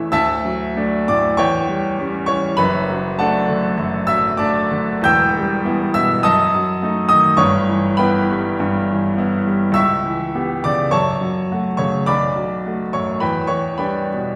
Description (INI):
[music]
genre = classical, romantic character piece for solo piano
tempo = 84-108 BPM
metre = 4/4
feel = rubato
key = D major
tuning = A4 = 440 Hz
[part]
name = clear baby grand piano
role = solo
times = 0.0-14.4 s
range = E1 to G6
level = -18 LUFS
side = equal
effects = none
[sound]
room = wet recital hall reverb, RT60 1.5 s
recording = recorded in a church or concert hall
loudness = -18 LUFS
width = mono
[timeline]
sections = 0.1-14.4 A section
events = none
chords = 0.1 D; 1.4 C#dim/E; 2.6 D/F#; 5.0 Em; 6.2 D#dim/F#; 7.4 Em/G; 9.8 C#m7b5; 10.9 F#m; 12.1 Bm7; 13.2 Em7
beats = | 0.10 0.74 1.38 1.97 | 2.57 3.18 3.77 4.38 | 5.04 5.64 6.24 6.82 | 7.40 7.99 8.60 9.18 | 9.76 10.35 10.92 11.50 | 12.08 12.65 13.22 13.79